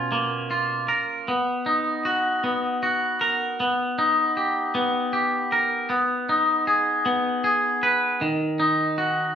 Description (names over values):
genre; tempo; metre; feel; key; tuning
rock; 52 BPM (dotted quarters); 6/8; straight; unclear; A4 = 440 Hz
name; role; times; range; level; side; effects
twangy electric guitar; solo; 0.0-9.3 s; B2 to B4; -21 LUFS; equal; none
room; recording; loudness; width
wet large studio reverb, RT60 0.9 s; band playing live in one room; -21 LUFS; side -8 dB against mid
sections
0.0-8.2 A section; 8.2-9.3 B section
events
none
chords
0.0 A#m/B; 1.3 D#m/B; 3.6 D#/B; 5.9 G#m/B; 8.2 D#m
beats
0.13 | 1.28 2.44 | 3.60 4.75 | 5.91 7.07 | 8.22